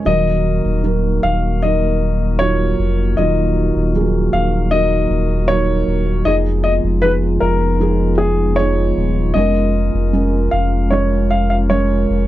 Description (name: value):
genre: pop ballad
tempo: 77 BPM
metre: 4/4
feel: straight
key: Eb minor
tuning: A4 = 440 Hz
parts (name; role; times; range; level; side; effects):
- felt-muted upright piano; accompaniment; 0.0-12.3 s; Eb3 to Db5; -20 LUFS; right 4 dB; none
- glass harmonica; sustained chords; 0.0-12.3 s; Ab3 to Bb4; -24 LUFS; left 4 dB; stereo widening
- warm grand piano; melody; 0.1-12.3 s; Ab4 to F5; -19 LUFS; left 2 dB; none
- saturated sub bass; bass; 0.1-12.3 s; Eb1 to F1; -18 LUFS; equal; none
room: little or no reverb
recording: dry, close 1970s-style studio recording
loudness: -14 LUFS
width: side -14 dB against mid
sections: 0.1-12.3 A section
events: none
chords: 0.1 Ebm; 6.3 Fm7b5; 9.4 Bbm7/F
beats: | 0.06 0.84 1.62 2.40 | 3.17 3.94 4.72 5.49 | 6.26 7.03 7.81 8.58 | 9.36 10.14 10.92 11.70